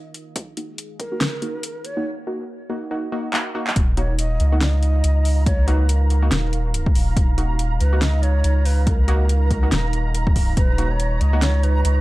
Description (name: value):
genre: deep dubstep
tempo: 141 BPM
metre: 4/4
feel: swing 58% on 16ths, half-time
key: Eb minor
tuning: A4 = 444 Hz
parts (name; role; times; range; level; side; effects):
- dark analog pad; sustained chords; 0.0-12.0 s; Eb4 to Bb5; -33 LUFS; right 7 dB; chorus
- deep house drum kit; drums; 0.1-11.9 s; handclaps, hi-hat, snare drum; -25 LUFS; equal; overdrive, studio ambience
- electronic kick drum; drums; 0.4-1.1, 3.8-10.7 s; none; -19 LUFS; equal; overdrive, high-pass filter on kick, studio ambience
- filtered dub chord stab; stabs; 0.6-11.4 s; Bb3 to Gb4; -29 LUFS; equal; chorus, dub echo
- breathy ney; melody; 1.0-12.0 s; Bb4 to Eb5; -31 LUFS; equal; vintage 12-bit sampler grit, dub echo
- soft dub sub bass; bass; 3.8-12.0 s; Eb1 to Db2; -18 LUFS; equal; none
- flickering grainy texture; texture; 4.1-12.0 s; Bb5; -33 LUFS; right 3 dB; built-in reverb
room: little or no reverb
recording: dark, warm production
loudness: -17 LUFS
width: side -18 dB against mid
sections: 0.0-3.8 A section; 3.8-12.0 B section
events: build-up 0.0-3.8; filter sweep on synth stab 0.0-3.8; filter sweep on analog synth pad 0.0-3.8; drum fill 3.3-3.8; drop 3.8-12.0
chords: 0.0 Ebm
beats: | 0.36 0.78 1.21 1.64 | 2.06 2.49 2.91 3.34 | 3.76 4.19 4.61 5.04 | 5.46 5.89 6.32 6.74 | 7.17 7.59 8.02 8.44 | 8.87 9.29 9.72 10.14 | 10.57 11.00 11.42 11.85